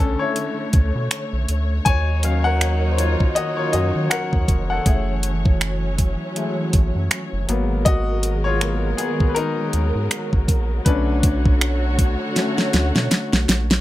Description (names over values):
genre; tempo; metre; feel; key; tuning
contemporary R&B; 80 BPM; 4/4; swing 58% on 16ths; unclear; A4 = 439 Hz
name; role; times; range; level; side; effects
clear baby grand piano; accompaniment; 0.0-13.8 s; D3 to Ab5; -24 LUFS; left 4 dB; none
dark studio string section; sustained chords; 0.0-13.8 s; D3 to C#5; -26 LUFS; right 1 dB; none
rubbery square bass; bass; 0.0-13.8 s; F1 to Eb3; -21 LUFS; equal; none
smooth R&B drum kit; drums; 0.4-13.8 s; finger snaps, hi-hat, kick drum, snare drum; -18 LUFS; equal; none
room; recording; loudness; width
little or no reverb; none; -18 LUFS; side -15 dB against mid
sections
0.0-13.8 A section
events
grand piano solo 0.0-13.8; drum fill 12.4-13.8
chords
0.0 Bm9; 1.9 Ebm9; 4.9 Gbm9; 7.5 Abm9; 10.9 Bm9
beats
0.36 1.11 | 1.86 2.61 3.36 4.11 | 4.86 5.61 6.36 7.11 | 7.86 8.61 9.36 10.11 | 10.86 11.61 12.36 13.11